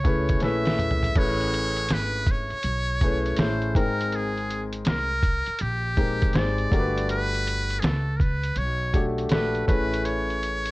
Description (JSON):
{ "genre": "hip hop, jazz-hop", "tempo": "81 BPM", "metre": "4/4", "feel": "swing 66% on 16ths", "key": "unclear", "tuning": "A4 = 440 Hz", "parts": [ { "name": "trumpet with metal mute", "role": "melody", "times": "0.0-10.7 s", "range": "G4 to E5", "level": "-28 LUFS", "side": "equal", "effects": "plate reverb" }, { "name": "warm concert grand piano", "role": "accompaniment", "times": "0.0-10.7 s", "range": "G#3 to G5", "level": "-27 LUFS", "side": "left 2 dB", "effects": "none" }, { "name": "upright bass", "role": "bass", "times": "0.0-10.7 s", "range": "G1 to C#2", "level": "-29 LUFS", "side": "equal", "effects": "none" }, { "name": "lo-fi sampler-style drum kit", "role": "drums", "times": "0.0-10.7 s", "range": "crash cymbal, hi-hat, kick drum, snare drum, toms", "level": "-24 LUFS", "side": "equal", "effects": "vintage 12-bit sampler grit" } ], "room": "light reverb", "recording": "worn, warbling old tape, cassette tape, warbly pitch drift", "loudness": "-22 LUFS", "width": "side -20 dB against mid", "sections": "0.0-1.2 A section; 1.2-10.7 A section", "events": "drum fill 0.4-1.2", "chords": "0.0 Amaj9; 3.8 G#maj9; 6.7 Gmaj9; 9.7 Amaj9", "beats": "0.42 | 1.16 1.90 2.64 3.38 | 4.12 4.86 5.60 6.34 | 7.08 7.83 8.57 9.31 | 10.05" }